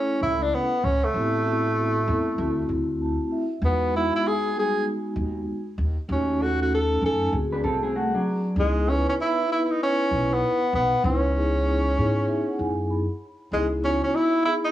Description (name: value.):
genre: hip hop.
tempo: 97 BPM.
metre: 4/4.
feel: swing 63% on 16ths.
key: C# minor.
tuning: A4 = 440 Hz.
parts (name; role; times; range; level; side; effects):
breathy tenor saxophone; melody; 0.0-14.7 s; G#3 to A4; -24 LUFS; equal; plate reverb.
vibraphone with soft mallets; accompaniment; 0.0-14.7 s; G3 to B5; -27 LUFS; equal; cassette tape, plate reverb.
upright bass; bass; 0.2-14.0 s; A1 to G#2; -27 LUFS; equal; none.
mellow electric guitar; second line; 7.5-8.6 s; F#3 to B4; -25 LUFS; equal; cassette tape, plate reverb.
room: moderate small room reverb, RT60 0.5 s.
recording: home recording on cassette, small room ambience.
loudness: -21 LUFS.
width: side -13 dB against mid.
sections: 0.0-13.5 A section; 13.5-14.7 A section.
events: vibraphone fill 2.7-3.6, 11.7-13.5.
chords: 0.0 Dmaj7(no3) (rootless); 1.1 Am7; 2.4 D9; 3.6 Emaj7; 6.1 D#m7b5; 7.3 D7#11; 8.6 C#m7.